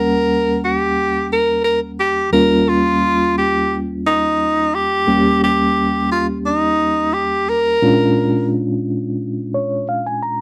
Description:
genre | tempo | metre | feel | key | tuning
blues | 87 BPM | 4/4 | straight | unclear | A4 = 440 Hz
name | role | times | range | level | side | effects
clear tenor saxophone | melody | 0.0-8.5 s | Eb4 to Bb4 | -18 LUFS | equal | none
mellow reed electric piano | accompaniment | 0.0-10.4 s | Eb2 to Bb5 | -21 LUFS | equal | medium tremolo
room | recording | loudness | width
little or no reverb | dry, close 1970s-style studio recording | -17 LUFS | mono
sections
0.0-10.4 A section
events
reed electric piano fill 9.2-10.4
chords
0.0 Eb7#9; 7.8 Bb7#9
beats
0.26 0.95 1.64 | 2.33 3.01 3.70 4.39 | 5.07 5.76 6.45 7.14 | 7.82 8.51 9.20 9.89

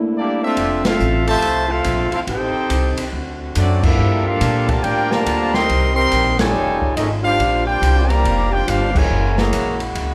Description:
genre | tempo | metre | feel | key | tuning
jazz, big band swing | 140 BPM | 4/4 | swing 64% on 8ths | F major | A4 = 440 Hz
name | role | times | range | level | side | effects
dark upright piano | accompaniment | 0.0-0.5 s | A3 to E4 | -24 LUFS | equal | none
mellow trombone section | sustained chords | 0.0-10.1 s | C2 to G4 | -31 LUFS | equal | none
warm trumpet section | melody | 0.2-9.8 s | Bb3 to C6 | -22 LUFS | equal | none
dark trombone section | second line | 0.2-9.8 s | C3 to G4 | -25 LUFS | equal | none
upright bass | bass | 0.6-10.1 s | F1 to Bb2 | -23 LUFS | equal | none
open jazz drum kit | drums | 0.6-10.1 s | crash cymbal, hi-hat, kick drum, ride cymbal, snare drum | -26 LUFS | equal | none
room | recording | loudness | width
moderate recital hall reverb, RT60 1.5 s | recorded in a church or concert hall | -18 LUFS | mono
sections
0.6-10.1 A section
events
break 0.0-0.6; band accent 0.8, 3.8, 6.3, 8.9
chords
0.0 C13; 0.6 Fmaj7; 2.3 Am7b5; 3.1 D7; 4.0 Gm9; 5.7 Cm7; 6.5 F7alt; 7.4 Bb69; 9.1 Gb9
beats
0.14 | 0.56 0.99 1.42 1.85 | 2.27 2.70 3.13 3.56 | 3.98 4.41 4.84 5.26 | 5.69 6.12 6.54 6.97 | 7.40 7.82 8.25 8.68 | 9.10 9.53 9.95

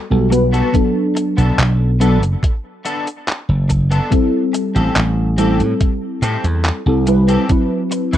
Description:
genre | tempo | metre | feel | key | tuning
vaporwave | 71 BPM | 4/4 | straight | A dorian | A4 = 440 Hz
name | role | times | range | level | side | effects
mellow FM electric piano | accompaniment | 0.0-8.2 s | F#3 to B4 | -17 LUFS | left 1 dB | analog chorus, tape echo
slap bass | bass | 0.1-8.2 s | F#1 to A2 | -15 LUFS | equal | none
electric guitar at the edge of break-up | riff | 0.3-8.2 s | B3 to B4 | -25 LUFS | left 2 dB | analog chorus, tape echo
detuned 8-bit digital drum machine | drums | 0.3-8.2 s | cabasa, handclaps, hi-hat | -22 LUFS | equal | vintage 12-bit sampler grit
electronic kick drum | drums | 0.7-7.7 s | none | -16 LUFS | equal | vintage 12-bit sampler grit
room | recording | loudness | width
light reverb | rough home demo mix | -14 LUFS | side -11 dB against mid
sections
0.0-8.2 A section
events
none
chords
0.0 Gmaj9; 0.7 Bm7; 4.1 Am7; 7.5 D13 (rootless)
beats
| 0.74 1.58 2.43 3.27 | 4.12 4.96 5.81 6.65 | 7.50

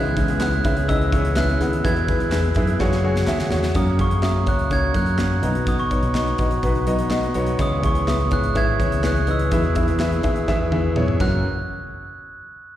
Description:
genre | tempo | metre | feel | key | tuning
piano-driven pop | 125 BPM | 4/4 | straight | F# mixolydian | A4 = 440 Hz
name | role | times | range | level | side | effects
glockenspiel with soft plastic mallets | melody | 0.0-11.4 s | C#6 to G#6 | -27 LUFS | right 2 dB | plate reverb, slapback echo
felt-muted upright piano | accompaniment | 0.0-11.5 s | F#2 to F#5 | -23 LUFS | left 2 dB | plate reverb, slapback echo
mellow woodwind section | sustained chords | 0.0-3.8 s | B2 to F#4 | -38 LUFS | right 1 dB | none
picked steel-string acoustic guitar | riff | 0.0-11.4 s | F#2 to A#4 | -29 LUFS | right 5 dB | slapback echo
fingered electric bass | bass | 0.0-11.4 s | F#1 to F#2 | -23 LUFS | equal | none
modern studio drum kit | drums | 0.0-11.3 s | crash cymbal, handclaps, hi-hat, kick drum, snare drum, toms | -25 LUFS | equal | none
group handclap | percussion | 0.4-3.4 s | none | -39 LUFS | left 1 dB | none
room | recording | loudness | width
light reverb | live gig heard through the venue's PA, recital hall reverb | -18 LUFS | side -12 dB against mid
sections
0.0-3.8 A section; 3.8-11.4 B section; 11.4-12.8 C section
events
drum fill 2.8-3.8, 10.5-11.4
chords
0.0 C#m7; 1.8 E; 2.8 F#sus2; 3.8 F#; 5.4 B; 7.6 C#m7; 9.5 E; 11.2 F#; 11.4 N.C.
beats
0.41 0.88 1.36 | 1.84 2.32 2.80 3.28 | 3.76 4.24 4.72 5.20 | 5.68 6.16 6.64 7.12 | 7.60 8.08 8.56 9.04 | 9.52 10.00 10.48 10.96 | 11.44

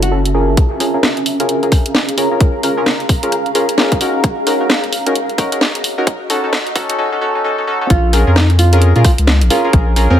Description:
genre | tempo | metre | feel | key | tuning
UK garage, two-step garage | 131 BPM | 4/4 | swing 61% on 16ths | Bb minor | A4 = 439 Hz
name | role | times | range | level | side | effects
nylon-string guitar | melody | 0.0-0.2, 7.9-10.2 s | C4 to Gb4 | -20 LUFS | right 3 dB | vintage 12-bit sampler grit, tape echo
saturated sub bass | bass | 0.0-0.6, 7.9-10.2 s | Gb1 to Bb2 | -11 LUFS | equal | none
garage drum kit | drums | 0.0-10.1 s | hi-hat, rim click, snare drum | -17 LUFS | equal | none
granular cloud pad | texture | 0.0-7.0 s | Db4 to Bb5 | -22 LUFS | right 1 dB | built-in reverb, sidechain pumping
deep mellow chord stab | stabs | 0.1-10.2 s | Db4 to Bb4 | -17 LUFS | left 1 dB | chorus, tape echo
electronic kick drum | drums | 0.6-9.8 s | none | -12 LUFS | equal | none
room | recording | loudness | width
light reverb, digital ambience | high-pass filter | -12 LUFS | side -10 dB against mid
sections
0.6-7.9 A section; 7.9-10.2 B section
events
build-up 0.6-7.9; drop 7.9-10.2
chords
0.0 Gbm7; 0.6 Bbm7; 6.1 Gbm; 7.9 Bbm7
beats
0.12 | 0.57 1.03 1.49 1.95 | 2.41 2.86 3.32 3.78 | 4.24 4.70 5.15 5.61 | 6.07 6.53 6.99 7.44 | 7.90 8.36 8.82 9.28 | 9.73 10.19

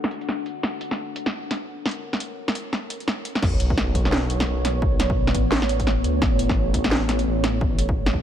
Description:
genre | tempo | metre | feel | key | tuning
half-time drum and bass | 172 BPM | 4/4 | swing 59% on 16ths, half-time | B minor | A4 = 438 Hz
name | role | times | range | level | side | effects
deep dark ambient pad | sustained chords | 0.0-8.2 s | A3 to F#5 | -28 LUFS | equal | chorus, built-in reverb, sidechain pumping
drum and bass drum kit | drums | 0.0-8.1 s | crash cymbal, hi-hat, snare drum | -25 LUFS | equal | none
dark detuned saw bass | bass | 3.4-8.2 s | A1 to D2 | -24 LUFS | equal | none
electronic kick drum | drums | 3.4-8.2 s | none | -24 LUFS | equal | none
sub drop | sound effects | 3.4-4.8 s | none | -31 LUFS | left 1 dB | none
room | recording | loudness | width
light reverb | low-pass filter | -21 LUFS | side -10 dB against mid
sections
0.0-3.4 A section; 3.4-8.2 B section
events
filter sweep on drum 0.0-3.4; filter sweep 0.0-3.4; drop 3.4-8.2; impact 3.4-4.8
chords
0.0 D6; 0.6 F#; 3.4 Bmadd9; 6.2 A6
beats
0.29 | 0.64 0.98 1.33 1.68 | 2.03 2.38 2.73 3.08 | 3.43 3.77 4.12 4.47 | 4.82 5.17 5.52 5.87 | 6.22 6.57 6.91 7.26 | 7.61 7.96

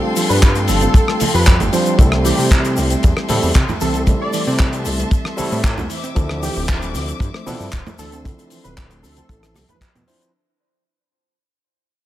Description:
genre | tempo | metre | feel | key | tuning
nu-disco, nu disco | 115 BPM | 4/4 | straight | unclear | A4 = 440 Hz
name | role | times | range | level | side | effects
overdriven tine electric piano | accompaniment | 0.0-10.3 s | F3 to C5 | -23 LUFS | equal | sidechain pumping
warm studio string section | sustained chords | 0.0-10.3 s | A4 to D6 | -28 LUFS | equal | sidechain pumping
soft round pluck | arpeggios | 0.0-10.3 s | E3 to G4 | -27 LUFS | right 5 dB | chorus, sidechain pumping, digital delay
damped 70s drum kit | drums | 0.2-10.3 s | handclaps, hi-hat, rim click, shaker | -23 LUFS | left 2 dB | none
wide unison lead | melody | 0.3-9.9 s | G4 to D5 | -25 LUFS | right 1 dB | digital delay
fat analog bass | bass | 0.3-10.0 s | D1 to C3 | -20 LUFS | equal | none
kick drum | drums | 0.4-9.9 s | none | -13 LUFS | equal | none
congas | percussion | 0.8-10.1 s | none | -26 LUFS | right 1 dB | none
room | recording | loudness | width
studio reverb | none | -14 LUFS | side -14 dB against mid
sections
0.0-10.3 A section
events
drop 0.0-10.3; fade-out 2.0-10.3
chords
0.0 G9sus4; 2.0 C6; 5.9 Dm9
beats
0.42 0.95 1.47 | 1.99 2.51 3.03 3.56 | 4.08 4.60 5.12 5.64 | 6.16 6.69 7.21 7.73 | 8.25 8.77 9.29 9.82

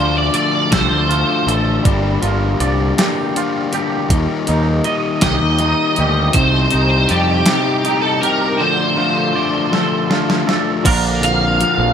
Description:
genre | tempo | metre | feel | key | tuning
indie rock | 53 BPM (dotted quarters) | 6/8 | straight | unclear | A4 = 441 Hz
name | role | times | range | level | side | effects
cranked stack guitar | melody | 0.0-1.5, 5.2-11.9 s | G4 to F5 | -18 LUFS | equal | overdrive, ensemble chorus, ping-pong delay
overdriven semi-hollow guitar | riff | 0.0-11.9 s | Bb2 to Eb4 | -19 LUFS | left 6 dB | none
twangy electric guitar | riff | 0.0-11.9 s | Bb2 to Eb5 | -22 LUFS | right 7 dB | ensemble chorus
growling picked electric bass | bass | 0.0-7.4, 10.9-11.9 s | G1 to F2 | -18 LUFS | right 1 dB | overdrive
crisp 8-bit digital drum machine | drums | 0.3-11.8 s | crash cymbal, hi-hat, kick drum, snare drum | -18 LUFS | equal | none
room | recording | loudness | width
light reverb | bright 1980s-style digital production | -13 LUFS | side -8 dB against mid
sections
0.0-10.9 A section; 10.9-11.9 B section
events
drum fill 9.7-10.9; overdriven electric guitar solo 10.9-11.9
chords
0.0 Dm7; 1.9 Gm7; 4.1 Eb; 6.4 Cmadd9; 8.6 Dm7; 10.9 Bb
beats
0.73 | 1.85 2.98 | 4.11 5.23 | 6.36 7.48 | 8.61 9.73 | 10.86

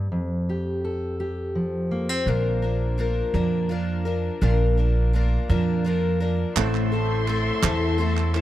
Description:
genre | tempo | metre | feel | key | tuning
indie folk with a building arrangement | 56 BPM (dotted quarters) | 6/8 | straight | unclear | A4 = 439 Hz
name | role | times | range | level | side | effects
fingerpicked steel-string acoustic guitar | accompaniment | 0.0-4.4 s | F2 to A4 | -27 LUFS | equal | none
picked twelve-string acoustic guitar | accompaniment | 2.3-8.4 s | A2 to Bb4 | -26 LUFS | left 5 dB | none
upright bass | bass | 2.3-8.4 s | A1 to F2 | -22 LUFS | right 1 dB | none
clear upright piano | accompaniment | 6.6-8.4 s | A1 to C5 | -31 LUFS | right 15 dB | none
dark chamber string section | sustained chords | 6.6-8.4 s | A4 to C6 | -30 LUFS | equal | none
group handclap | percussion | 6.6-8.4 s | none | -29 LUFS | right 10 dB | none
room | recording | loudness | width
little or no reverb | dry, close 1970s-style studio recording | -21 LUFS | side -13 dB against mid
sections
0.0-2.3 A section; 2.3-8.4 B section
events
build-up 2.3-8.4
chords
0.1 Fadd9; 2.3 Bb; 6.6 Am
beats
| 0.12 1.20 | 2.27 3.35 | 4.42 5.50 | 6.57 7.63

